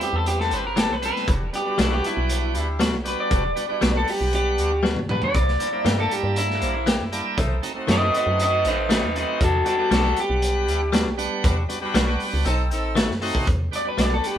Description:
straight-eighth soul blues; 118 BPM; 4/4; straight; A4 = 444 Hz
electric guitar through a small old amp; melody; 0.0-14.4 s; D#4 to D#5; -24 LUFS; equal; tape echo
bright tonewheel organ; accompaniment; 0.0-14.4 s; G3 to F#5; -28 LUFS; right 2 dB; overdrive, slow rotary speaker
clear horn section; sustained chords; 0.0-13.1 s; G3 to A4; -32 LUFS; equal
crunchy breakbeat drum kit; drums; 0.0-14.4 s; hi-hat, kick drum, snare drum, toms; -24 LUFS; equal
woody FM bass; bass; 0.1-14.2 s; E1 to G2; -25 LUFS; equal
direct-recorded clean electric guitar; stabs; 0.8-14.1 s; D#3 to G4; -26 LUFS; left 3 dB
moderate studio reverb, RT60 0.8 s; band playing live in one room; -20 LUFS; side -10 dB against mid
0.0-13.5 A section
clean electric guitar solo 0.0-13.5; drum fill 4.8-5.3
0.0 Am9; 1.3 Em9; 5.3 C7; 7.4 B7b9; 9.4 Em9; 12.5 B7b9; 13.5 Em9
0.26 0.77 | 1.28 1.79 2.29 2.80 | 3.31 3.82 4.33 4.84 | 5.34 5.85 6.36 6.87 | 7.38 7.89 8.39 8.90 | 9.41 9.92 10.43 10.94 | 11.44 11.95 12.46 12.97 | 13.48 13.98

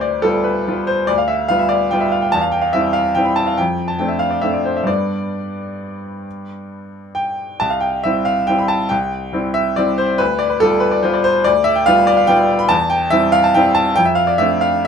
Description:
classical, piano waltz; 127-151 BPM; 3/4; rubato; C major; A4 = 441 Hz
bright baby grand piano; solo; 0.0-14.9 s; C2 to B5; -14 LUFS; equal
light reverb; minimal, uncompressed stereo recording; -14 LUFS; side -7 dB against mid
0.0-14.9 A section
0.0 G7/D; 2.3 C/E; 3.6 Dm7/F; 4.9 G; 7.6 C; 10.2 G7/D; 12.7 C/E; 14.0 Dm7/F
0.24 0.67 | 1.09 1.50 1.92 | 2.33 2.75 3.17 | 3.59 4.00 4.43 | 4.88 5.33 5.80 | 6.25 6.70 7.16 | 7.61 8.04 8.49 | 8.91 9.34 9.78 | 10.20 10.62 11.04 | 11.46 11.87 12.29 | 12.70 13.12 13.55 | 13.97 14.39 14.86

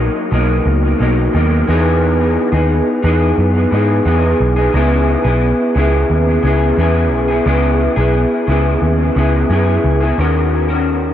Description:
indie pop, bedroom pop; 88 BPM; 4/4; straight; C# dorian; A4 = 438 Hz
electric guitar through a small old amp; accompaniment; 0.0-11.1 s; B2 to A#4; -14 LUFS; left 1 dB; analog chorus, vibrato effect, tape echo
vintage muted picked electric bass; bass; 0.0-11.1 s; B1 to G#2; -15 LUFS; equal
light reverb; echo-heavy mix; -12 LUFS; side -10 dB against mid
0.0-10.2 A section
0.0 Bmaj7; 1.7 Emaj7; 4.7 C#m7; 10.2 D#m7
0.66 1.34 | 2.02 2.70 3.38 4.06 | 4.74 5.42 6.10 6.78 | 7.46 8.14 8.82 9.50 | 10.18 10.86

